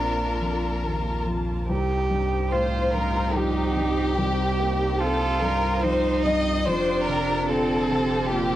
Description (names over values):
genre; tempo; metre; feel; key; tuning
neoclassical piano and strings; 72 BPM; 3/4; rubato; C dorian; A4 = 437 Hz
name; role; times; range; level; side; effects
rich chamber violin section; melody; 0.0-8.6 s; G4 to Eb5; -26 LUFS; left 2 dB; tape echo
warm cello; second line; 0.0-8.6 s; Bb3 to G4; -27 LUFS; right 5 dB; cassette tape
dark baby grand piano; accompaniment; 0.0-8.6 s; Bb1 to C4; -28 LUFS; left 2 dB; cassette tape
rich symphonic string section; sustained chords; 0.0-8.6 s; Bb3 to A5; -34 LUFS; right 2 dB; cassette tape
pure sine sub bass; bass; 0.0-8.6 s; F1 to C2; -29 LUFS; equal; none
room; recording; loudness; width
light reverb, studio reverb; home recording on cassette; -21 LUFS; side -13 dB against mid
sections
0.0-8.6 A section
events
none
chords
0.0 Bbmaj7; 1.7 Cm7; 6.7 Fsus2